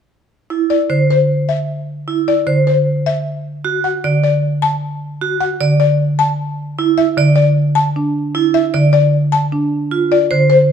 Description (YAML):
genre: classical, minimalist pattern music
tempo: 153 BPM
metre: 4/4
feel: straight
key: C lydian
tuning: A4 = 440 Hz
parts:
  - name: vibraphone with hard mallets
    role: arpeggios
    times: 0.5-10.6 s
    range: E4 to D5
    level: -16 LUFS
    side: right 7 dB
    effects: none
  - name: buzzing marimba with medium hard mallets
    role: melody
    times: 0.7-10.7 s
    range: C5 to A5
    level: -17 LUFS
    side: left 7 dB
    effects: none
  - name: marimba with soft mallets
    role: accompaniment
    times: 0.9-10.6 s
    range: D3 to D4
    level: -16 LUFS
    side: right 1 dB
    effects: none
room: moderate recital hall reverb, RT60 1.4 s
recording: close, detailed microphones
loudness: -13 LUFS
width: side -8 dB against mid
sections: 0.3-10.7 A section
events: none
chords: 0.3 C; 3.4 D; 6.6 N.C.; 9.7 F5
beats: | 0.31 0.70 1.09 1.49 | 1.88 2.27 2.66 3.06 | 3.45 3.84 4.23 4.62 | 5.02 5.41 5.80 6.19 | 6.58 6.98 7.37 7.76 | 8.15 8.55 8.94 9.33 | 9.72 10.12 10.51